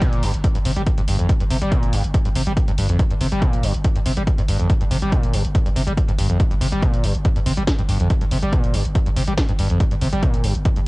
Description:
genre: driving peak-time techno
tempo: 141 BPM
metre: 4/4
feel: straight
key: G minor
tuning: A4 = 441 Hz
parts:
  - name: screaming distorted acid line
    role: riff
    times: 0.0-10.8 s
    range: F2 to G3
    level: -22 LUFS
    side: equal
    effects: distortion, wide subtle chorus, sidechain pumping, cassette tape, analog delay
  - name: electronic kick drum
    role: drums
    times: 0.0-10.7 s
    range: none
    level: -19 LUFS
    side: equal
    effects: cassette tape
  - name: techno drum kit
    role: drums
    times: 0.0-10.8 s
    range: hi-hat, snare drum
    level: -29 LUFS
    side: equal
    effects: sidechain pumping on hats, cassette tape, sidechain pumping on cymbals
  - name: growling 808-style bass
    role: bass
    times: 0.1-10.9 s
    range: G1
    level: -24 LUFS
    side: equal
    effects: sidechain pumping, low-pass filter
room: little or no reverb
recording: home recording on cassette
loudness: -17 LUFS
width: side -22 dB against mid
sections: 0.0-10.9 A section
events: none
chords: 0.0 Gm

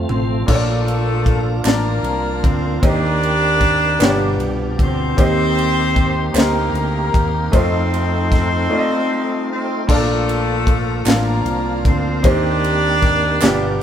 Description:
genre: slow gospel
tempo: 51 BPM (dotted quarters)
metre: 6/8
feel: straight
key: Bb major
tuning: A4 = 440 Hz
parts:
  - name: clear grand piano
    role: accompaniment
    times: 0.0-13.8 s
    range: G2 to A5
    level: -22 LUFS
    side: equal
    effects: none
  - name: tonewheel organ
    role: sustained chords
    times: 0.0-13.8 s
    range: B2 to G4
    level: -26 LUFS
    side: right 2 dB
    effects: overdrive, chorus vibrato, slow rotary speaker
  - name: fingered electric bass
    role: bass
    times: 0.0-13.8 s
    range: G1 to F2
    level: -21 LUFS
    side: right 1 dB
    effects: none
  - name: mellow horn section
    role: melody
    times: 0.1-13.8 s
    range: A3 to D5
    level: -20 LUFS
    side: left 1 dB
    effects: none
  - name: tight funk drum kit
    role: drums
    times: 0.1-13.6 s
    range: crash cymbal, kick drum, ride cymbal, snare drum, toms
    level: -19 LUFS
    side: equal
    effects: none
  - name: group handclap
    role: percussion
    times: 1.6-6.7, 11.1-13.8 s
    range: none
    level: -28 LUFS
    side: right 4 dB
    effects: none
room: moderate studio reverb, RT60 0.9 s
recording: band playing live in one room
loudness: -14 LUFS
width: side -9 dB against mid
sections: 0.5-9.9 A section; 9.9-13.8 A section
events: drum fill 0.0-0.5; break 8.7-9.9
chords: 0.5 Bbmaj7; 2.8 Eb6; 4.0 G7; 5.2 Cm7/Eb; 7.5 F7; 9.9 Bbmaj7; 12.2 Eb6

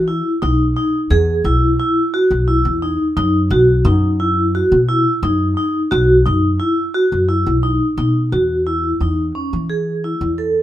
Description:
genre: progressive instrumental, band music in an uneven meter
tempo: 175 BPM (eighths)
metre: 7/8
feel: straight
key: unclear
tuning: A4 = 440 Hz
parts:
  - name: upright bass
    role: bass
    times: 0.0-10.6 s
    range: B1 to E3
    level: -18 LUFS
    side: equal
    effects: none
  - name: vibraphone with medium hard mallets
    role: arpeggios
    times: 0.1-10.6 s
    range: C#4 to A4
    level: -16 LUFS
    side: equal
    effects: none
room: moderate studio reverb, RT60 0.8 s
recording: minimal, uncompressed stereo recording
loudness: -14 LUFS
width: side -13 dB against mid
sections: 0.0-8.3 A section; 8.3-10.6 B section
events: none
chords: 0.0 Emaj7(no3); 3.5 B; 8.3 N.C.

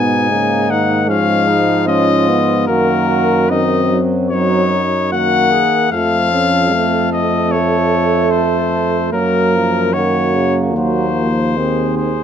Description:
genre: classical, brass quintet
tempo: 75 BPM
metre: 4/4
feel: straight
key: unclear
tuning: A4 = 438 Hz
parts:
  - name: clear cornet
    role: melody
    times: 0.0-12.2 s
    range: Bb4 to Ab5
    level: -17 LUFS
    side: left 6 dB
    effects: none
  - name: dark trumpet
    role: second line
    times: 0.0-12.2 s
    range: Db4 to Bb4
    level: -22 LUFS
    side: right 9 dB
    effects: none
  - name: mellow French horn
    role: accompaniment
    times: 0.0-12.1 s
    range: Ab3 to Db4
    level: -20 LUFS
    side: left 2 dB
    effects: none
  - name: warm trombone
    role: accompaniment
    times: 0.0-12.1 s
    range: Cb3 to A3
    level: -20 LUFS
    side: right 4 dB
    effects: none
  - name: warm bass trombone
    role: bass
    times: 0.0-12.2 s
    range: Eb2 to Ab2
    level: -19 LUFS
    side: right 1 dB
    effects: none
room: light reverb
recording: none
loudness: -12 LUFS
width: side -8 dB against mid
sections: 0.0-12.2 A section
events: none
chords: 0.0 Abm; 2.7 Ebm/Gb; 5.9 F; 9.1 Gb; 10.7 Cdim/Eb

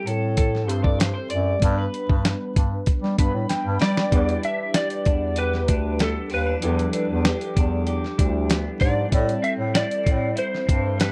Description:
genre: indie pop, bedroom pop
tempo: 96 BPM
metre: 4/4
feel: straight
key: unclear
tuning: A4 = 441 Hz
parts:
  - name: electric guitar through a small old amp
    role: accompaniment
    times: 0.0-11.1 s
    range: E3 to D5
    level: -33 LUFS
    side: equal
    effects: subtle chorus, warbly pitch drift
  - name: warbly lo-fi synth keys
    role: accompaniment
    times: 0.0-11.1 s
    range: F3 to B5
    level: -32 LUFS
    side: equal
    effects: chorus, cassette tape
  - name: breathy bass clarinet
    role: bass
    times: 0.1-11.1 s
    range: D2 to G3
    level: -27 LUFS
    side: equal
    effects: none
  - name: dusty soul sampler-style drum kit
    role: drums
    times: 0.1-11.1 s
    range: hi-hat, kick drum, snare drum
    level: -24 LUFS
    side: equal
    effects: none
  - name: electric slide guitar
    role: melody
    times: 3.8-11.1 s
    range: A4 to E5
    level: -28 LUFS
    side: equal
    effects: ensemble chorus
room: little or no reverb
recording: dry, close 1970s-style studio recording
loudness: -22 LUFS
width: mono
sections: 0.0-4.1 A section; 4.1-11.1 B section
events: clean electric guitar solo 0.0-4.1; synth keys fill 2.9-4.1; drum fill 3.5-4.1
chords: 0.0 Am7; 1.6 G; 4.1 Em7; 9.1 Am7

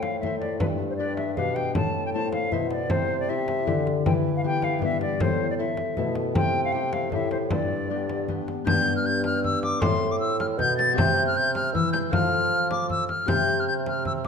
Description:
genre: classical, renaissance-style consort dance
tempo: 156 BPM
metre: 3/4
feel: straight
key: G mixolydian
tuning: A4 = 442 Hz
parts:
  - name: silver concert flute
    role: melody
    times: 0.0-14.3 s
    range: B4 to A6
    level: -27 LUFS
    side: left 2 dB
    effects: none
  - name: concert harp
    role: accompaniment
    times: 0.0-14.3 s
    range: G2 to F5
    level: -28 LUFS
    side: left 6 dB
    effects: none
  - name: mellow bassoon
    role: bass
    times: 0.0-14.3 s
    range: G2 to F3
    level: -30 LUFS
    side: right 4 dB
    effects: none
  - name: frame drum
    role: percussion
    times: 0.0-14.3 s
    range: none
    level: -30 LUFS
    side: equal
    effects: none
room: wet recital hall reverb, RT60 1.3 s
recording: dark, warm production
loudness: -22 LUFS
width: side -6 dB against mid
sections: 0.0-8.7 A section; 8.7-14.3 B section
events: none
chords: 0.0 Am; 0.6 G; 1.8 Am; 2.9 C; 4.1 Em; 5.2 Am; 6.3 C; 7.5 G; 9.8 Am; 11.0 C; 12.1 F; 13.3 C

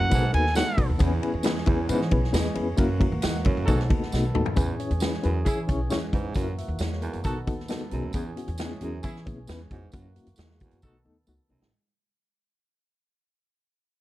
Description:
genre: uptempo 1960s-style soul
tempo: 134 BPM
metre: 4/4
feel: straight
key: E major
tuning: A4 = 440 Hz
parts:
  - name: bright trumpet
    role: melody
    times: 0.0-0.9 s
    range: F#5 to G#5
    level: -26 LUFS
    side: right 2 dB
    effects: none
  - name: percussive tonewheel organ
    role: sustained chords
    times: 0.0-11.7 s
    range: D#3 to A4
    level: -37 LUFS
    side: right 1 dB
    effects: overdrive, wide subtle chorus
  - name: warm baritone saxophone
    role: riff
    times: 0.0-11.7 s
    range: E2 to G#2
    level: -33 LUFS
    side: right 5 dB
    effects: none
  - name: upright bass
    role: bass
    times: 0.0-11.7 s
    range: A1 to E3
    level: -28 LUFS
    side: equal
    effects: none
  - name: mellow reed electric piano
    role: accompaniment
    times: 0.1-11.6 s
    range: A3 to F#5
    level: -30 LUFS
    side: left 3 dB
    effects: fast tremolo
  - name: swinging big-band drum kit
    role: drums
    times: 0.1-11.7 s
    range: hi-hat, kick drum, ride cymbal, snare drum, toms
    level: -27 LUFS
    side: equal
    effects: none
  - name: tambourine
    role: percussion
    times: 0.1-11.4 s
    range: none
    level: -42 LUFS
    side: right 4 dB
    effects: none
  - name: clear horn section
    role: second line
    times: 3.7-11.0 s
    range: C#4 to A4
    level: -33 LUFS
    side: right 1 dB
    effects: none
room: light reverb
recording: dark, warm production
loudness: -23 LUFS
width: side -16 dB against mid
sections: 0.0-4.6 A section; 4.6-11.7 B section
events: band accent 2.8-4.6; drum fill 4.1-4.6, 10.8-11.7; fade-out 4.6-11.7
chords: 0.1 B7; 1.0 E6; 2.8 F#7; 3.7 B7; 4.6 E6; 6.4 F#7; 7.2 B7; 8.1 E6; 9.9 F#7; 10.8 B7

